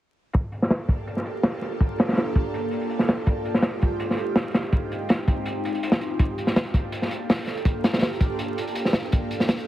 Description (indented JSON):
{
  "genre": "drum and bass",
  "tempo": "164 BPM",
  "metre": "4/4",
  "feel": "straight",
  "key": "none",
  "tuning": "none",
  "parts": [
    { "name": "crunchy breakbeat drum kit", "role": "drums", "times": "0.3-9.7 s", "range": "hi-hat, kick drum, snare drum", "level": "-22 LUFS", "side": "equal", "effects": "low-pass filter on kick, low-pass filter on hats, low-pass filter on snare, low-pass filter on room" }
  ],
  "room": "light reverb, small room ambience",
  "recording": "heavily compressed radio sound, vinyl crackle",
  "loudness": "-22 LUFS",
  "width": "side -14 dB against mid",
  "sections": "0.3-9.7 A section",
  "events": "filter sweep on drum 0.3-9.7",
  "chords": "none",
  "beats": "| 0.34 0.71 1.07 1.44 | 1.80 2.17 2.54 2.90 | 3.27 3.63 4.00 4.37 | 4.73 5.10 5.46 5.83 | 6.19 6.56 6.93 7.29 | 7.66 8.02 8.39 8.76 | 9.12 9.49"
}